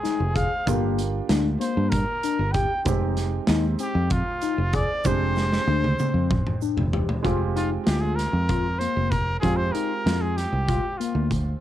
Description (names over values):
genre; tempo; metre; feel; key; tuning
progressive instrumental, band music in an uneven meter; 192 BPM (eighths); 7/8; straight; F dorian; A4 = 444 Hz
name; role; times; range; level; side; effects
breathy trumpet; melody; 0.0-11.3 s; F4 to G5; -28 LUFS; equal; cassette tape
warm concert grand piano; accompaniment; 0.0-11.6 s; Ab3 to G5; -33 LUFS; right 9 dB; cassette tape
tine electric piano; arpeggios; 0.0-11.3 s; Bb3 to Ab4; -29 LUFS; left 9 dB; medium stereo tremolo, cassette tape, tape echo
big rock drum kit; drums; 0.1-11.5 s; hi-hat, kick drum, snare drum, toms; -27 LUFS; equal; none
tube shaker; percussion; 0.1-6.9 s; none; -44 LUFS; right 12 dB; none
fingered electric bass; bass; 0.2-11.5 s; F1 to G2; -24 LUFS; equal; none
room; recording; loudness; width
moderate booth ambience, RT60 0.2 s; home recording on cassette; -21 LUFS; side -12 dB against mid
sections
0.0-7.2 A section; 7.2-11.6 B section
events
drum fill 5.4-7.2; trumpet solo 7.2-11.6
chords
0.0 Fm7; 0.7 Gm7; 2.9 Fm7; 5.0 Fm69; 7.2 Fmadd9